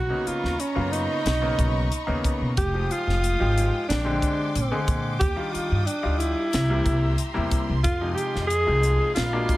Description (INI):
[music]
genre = electric jazz fusion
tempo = 91 BPM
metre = 4/4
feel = straight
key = unclear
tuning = A4 = 441 Hz
[part]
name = mellow alto saxophone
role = melody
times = 0.0-9.6 s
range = C#4 to Ab4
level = -26 LUFS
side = right 1 dB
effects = slapback echo
[part]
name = clear studio string section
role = sustained chords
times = 0.0-9.6 s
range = Ab3 to Eb6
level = -34 LUFS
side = left 2 dB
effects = none
[part]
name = upright bass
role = bass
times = 0.0-9.5 s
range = F1 to B2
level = -25 LUFS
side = equal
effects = none
[part]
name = clear baby grand piano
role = accompaniment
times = 0.1-9.6 s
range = Cb3 to Ab4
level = -30 LUFS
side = left 2 dB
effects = none
[part]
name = crisp fusion drum kit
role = drums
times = 0.3-9.6 s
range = hi-hat, kick drum, snare drum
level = -28 LUFS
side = equal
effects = none
[sound]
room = light reverb, studio ambience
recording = none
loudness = -21 LUFS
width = side -17 dB against mid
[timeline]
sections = 0.0-9.6 A section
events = none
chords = 0.0 Bmaj9; 2.6 Fm9; 3.9 Bb13; 5.2 Ebmaj9; 6.5 C7; 7.8 Fm7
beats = 0.60 1.26 1.92 | 2.57 3.23 3.89 4.55 | 5.21 5.87 6.53 7.18 | 7.84 8.50 9.16